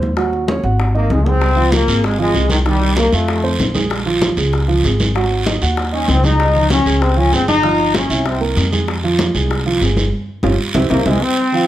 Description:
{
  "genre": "latin, salsa",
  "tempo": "193 BPM",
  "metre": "4/4",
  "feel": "straight",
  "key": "F minor",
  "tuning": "A4 = 437 Hz",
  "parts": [
    { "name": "dark baby grand piano", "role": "accompaniment", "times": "0.0-11.7 s", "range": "Eb3 to Gb5", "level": "-20 LUFS", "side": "right 4 dB", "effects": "none" },
    { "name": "upright bass", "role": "bass", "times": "0.0-11.2 s", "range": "G1 to F2", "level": "-17 LUFS", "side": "equal", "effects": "none" },
    { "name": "bongos", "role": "percussion", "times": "0.0-11.1 s", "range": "none", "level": "-25 LUFS", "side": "left 4 dB", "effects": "none" },
    { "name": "congas", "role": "percussion", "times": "0.0-11.7 s", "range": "none", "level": "-24 LUFS", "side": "equal", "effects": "none" },
    { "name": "brilliant trombone section", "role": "melody", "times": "1.0-3.6, 5.9-8.4, 10.9-11.7 s", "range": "Eb3 to Eb4", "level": "-17 LUFS", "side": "left 2 dB", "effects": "none" },
    { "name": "guiro", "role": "percussion", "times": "1.4-11.7 s", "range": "none", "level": "-24 LUFS", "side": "right 4 dB", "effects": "none" }
  ],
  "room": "light reverb",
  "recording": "none",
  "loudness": "-13 LUFS",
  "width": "side -13 dB against mid",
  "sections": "0.0-11.4 A section",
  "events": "band accent 10.1-11.4; drum fill 10.4-11.4",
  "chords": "0.2 Ab5; 1.4 Db6; 2.7 Cm7; 3.3 F; 3.9 Bbm7; 5.2 Ab5; 6.4 Db; 7.6 Eb13/G; 8.3 C7; 8.9 Fmadd9; 10.1 Db; 10.8 C"
}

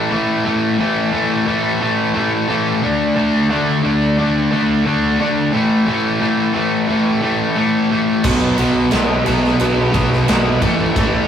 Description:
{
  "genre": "quiet-loud alternative rock",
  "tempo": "88 BPM",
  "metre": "4/4",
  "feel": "straight",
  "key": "unclear",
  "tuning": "A4 = 440 Hz",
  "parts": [
    { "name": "cranked stack guitar", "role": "riff", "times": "0.0-11.3 s", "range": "A2 to D4", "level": "-15 LUFS", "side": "equal", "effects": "overdrive" },
    { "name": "fuzz picked electric bass", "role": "bass", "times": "8.2-11.2 s", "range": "A1 to B1", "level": "-21 LUFS", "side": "equal", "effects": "overdrive" },
    { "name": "huge arena drum kit", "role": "drums", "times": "8.2-11.1 s", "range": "crash cymbal, kick drum, ride cymbal, snare drum", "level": "-18 LUFS", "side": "equal", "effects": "none" }
  ],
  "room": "wet small room reverb, RT60 0.5 s",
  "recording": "rough rehearsal-room recording",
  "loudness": "-14 LUFS",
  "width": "side -8 dB against mid",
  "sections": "0.0-11.3 A section",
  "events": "none",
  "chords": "0.0 A5; 2.8 D5; 5.5 A5; 8.2 B5; 10.6 A5"
}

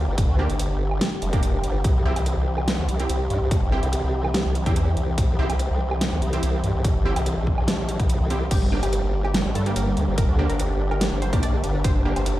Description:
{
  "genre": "heavy wobble dubstep",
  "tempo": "144 BPM",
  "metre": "4/4",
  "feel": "half-time",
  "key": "G dorian",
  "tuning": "A4 = 440 Hz",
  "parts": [
    { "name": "warm symphonic string section", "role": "sustained chords", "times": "0.0-12.4 s", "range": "D3 to G4", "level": "-30 LUFS", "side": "left 1 dB", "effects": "sidechain pumping, low-pass filter" },
    { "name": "orchestra-hit-like synth stab", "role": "stabs", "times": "0.0-12.1 s", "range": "Bb3 to G4", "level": "-32 LUFS", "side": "right 2 dB", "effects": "built-in reverb, tape echo" },
    { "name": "formant-sweep wobble bass", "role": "bass", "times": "0.0-12.4 s", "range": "F1 to G2", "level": "-23 LUFS", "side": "equal", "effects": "chorus, overdrive" },
    { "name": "dubstep drum kit", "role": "drums", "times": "0.2-12.3 s", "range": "crash cymbal, hi-hat, snare drum, woodblock", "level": "-28 LUFS", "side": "right 1 dB", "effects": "studio reverb" },
    { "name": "electronic kick drum", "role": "drums", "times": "0.2-11.9 s", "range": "none", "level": "-22 LUFS", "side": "equal", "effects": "studio reverb" },
    { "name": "wide unison pluck", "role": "melody", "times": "8.5-12.4 s", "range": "G3 to D5", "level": "-29 LUFS", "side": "right 1 dB", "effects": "cassette tape, tape echo" }
  ],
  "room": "light reverb, digital ambience",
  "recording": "played on a big sound system in a bare room, large studio reverb",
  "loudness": "-20 LUFS",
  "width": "side -15 dB against mid",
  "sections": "0.0-12.4 A section",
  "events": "none",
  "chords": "0.0 Gm; 1.8 C; 8.5 Gm"
}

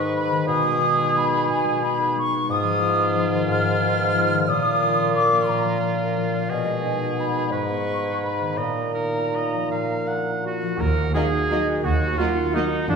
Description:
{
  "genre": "classical",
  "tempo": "151-194 BPM",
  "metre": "3/4",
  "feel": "rubato",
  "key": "Eb minor",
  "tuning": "A4 = 435 Hz",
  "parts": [
    { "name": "clear oboe", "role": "second line", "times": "0.0-13.0 s", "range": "D4 to Gb5", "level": "-30 LUFS", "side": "right 3 dB", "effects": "none" },
    { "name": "small flute group", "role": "second line", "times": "0.0-13.0 s", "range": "D5 to F6", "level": "-24 LUFS", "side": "left 1 dB", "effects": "none" },
    { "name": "warm bassoon", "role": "accompaniment", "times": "0.0-10.6 s", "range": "Ab2 to Cb3", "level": "-26 LUFS", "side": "right 2 dB", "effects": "none" },
    { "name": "concert harp", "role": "arpeggios", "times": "0.0-13.0 s", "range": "G#2 to D#5", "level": "-26 LUFS", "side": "left 4 dB", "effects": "none" },
    { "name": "warm trumpet", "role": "stabs", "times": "10.4-13.0 s", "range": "D4 to Bb4", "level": "-26 LUFS", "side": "right 4 dB", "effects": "none" },
    { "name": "muted symphonic cello section", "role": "bass", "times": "10.8-13.0 s", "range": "Eb2 to F2", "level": "-27 LUFS", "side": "right 2 dB", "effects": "none" },
    { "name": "muted symphonic double bass section", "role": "bass", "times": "10.8-13.0 s", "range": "F1 to Eb2", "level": "-27 LUFS", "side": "right 2 dB", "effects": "none" },
    { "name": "muted symphonic violin section", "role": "second line", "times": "11.1-12.6 s", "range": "Gb4", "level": "-34 LUFS", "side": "right 3 dB", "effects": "none" },
    { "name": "mellow French horn section", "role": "sustained chords", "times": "11.1-12.7 s", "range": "Gb3 to Eb4", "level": "-32 LUFS", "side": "left 1 dB", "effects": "none" },
    { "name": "muted symphonic violin section", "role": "melody", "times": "11.2-12.6 s", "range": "Eb5", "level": "-36 LUFS", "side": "left 3 dB", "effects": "none" },
    { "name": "muted symphonic viola section", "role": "accompaniment", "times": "11.2-12.6 s", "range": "Bb3", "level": "-32 LUFS", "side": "right 4 dB", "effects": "none" }
  ],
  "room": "wet recital hall reverb, RT60 1.4 s",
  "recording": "recorded in a church or concert hall",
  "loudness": "-20 LUFS",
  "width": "side -5 dB against mid",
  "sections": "0.0-10.8 A section; 10.8-13.0 B section",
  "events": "none",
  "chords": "0.5 G#m/B; 2.5 Fm7b5/Ab; 4.5 Bb; 6.5 Abm/Cb; 7.5 Abm; 8.6 Bbsus4; 9.7 Bb; 10.8 Ebm"
}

